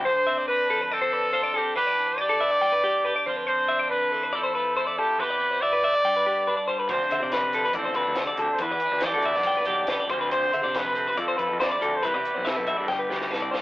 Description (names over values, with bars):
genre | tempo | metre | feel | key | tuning
math rock and midwest emo | 140 BPM | 4/4 | straight | unclear | A4 = 438 Hz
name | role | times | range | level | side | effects
clear trumpet | melody | 0.0-13.6 s | G4 to D5 | -25 LUFS | equal | none
twelve-string electric guitar | accompaniment | 0.0-13.6 s | F2 to G4 | -32 LUFS | right 2 dB | none
clean electric guitar | arpeggios | 0.0-13.6 s | G4 to G5 | -26 LUFS | left 2 dB | none
fuzz fingered electric bass | bass | 0.0, 6.9-13.5 s | G1 to E3 | -33 LUFS | equal | overdrive
compact cocktail drum kit | drums | 6.9-13.6 s | hi-hat, kick drum, snare drum | -32 LUFS | left 1 dB | none
room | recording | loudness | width
moderate studio reverb, RT60 0.6 s | rough rehearsal-room recording, warm saturation, telephone sound | -22 LUFS | side -17 dB against mid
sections
0.0-13.6 A section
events
drum fill 12.9-13.6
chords
0.0 Dm7; 1.8 Em7; 3.3 Dm7; 4.3 Fmaj7; 5.2 Cmaj7; 6.0 G; 6.9 Dm7; 8.6 Em7; 10.1 Dm7; 12.0 Cmaj7; 12.9 G